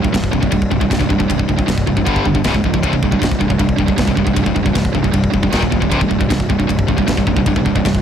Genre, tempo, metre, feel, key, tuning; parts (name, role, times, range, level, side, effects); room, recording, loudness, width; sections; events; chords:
heavy metal; 156 BPM; 4/4; straight; C phrygian; A4 = 440 Hz
tight distorted guitar; riff; 0.0-8.0 s; C2 to G3; -19 LUFS; left 9 dB; distortion
tight distorted guitar; riff; 0.0-8.0 s; C2 to G3; -18 LUFS; right 10 dB; distortion
fuzz picked electric bass; bass; 0.0-8.0 s; C1 to G1; -21 LUFS; equal; overdrive
tight metal drum kit; drums; 0.0-8.0 s; kick drum, ride cymbal, snare drum; -19 LUFS; left 1 dB
light reverb; -13 LUFS; side -8 dB against mid
0.0-8.0 A section
0.0 C5; 2.1 G5; 2.4 Db5; 2.8 C5; 5.5 Eb5; 5.9 C5